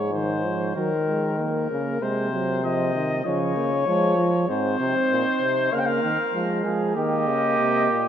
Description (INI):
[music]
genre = classical, imitative canzona for brass ensemble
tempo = 97 BPM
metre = 4/4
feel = straight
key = Db major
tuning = A4 = 440 Hz
[part]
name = mellow trumpet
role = melody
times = 0.0-8.1 s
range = Bb4 to G5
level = -26 LUFS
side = left 4 dB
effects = none
[part]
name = mellow trombone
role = accompaniment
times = 0.0-8.1 s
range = Eb3 to C4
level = -26 LUFS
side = right 2 dB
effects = none
[part]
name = clear euphonium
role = bass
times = 0.0-8.1 s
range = Ab2 to F3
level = -26 LUFS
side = equal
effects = none
[part]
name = mellow flugelhorn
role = second line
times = 4.8-8.1 s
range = Eb4 to Bb4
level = -26 LUFS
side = right 2 dB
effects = none
[sound]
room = wet cathedral reverb, RT60 5.5 s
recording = in a vast, echoing space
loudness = -21 LUFS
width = side -9 dB against mid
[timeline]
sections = 0.0-8.1 A section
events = none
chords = 0.0 Db (rootless); 0.8 Eb5; 2.0 Ab/C; 3.3 Db; 4.5 Ab; 5.7 Bbm/Db; 7.0 Eb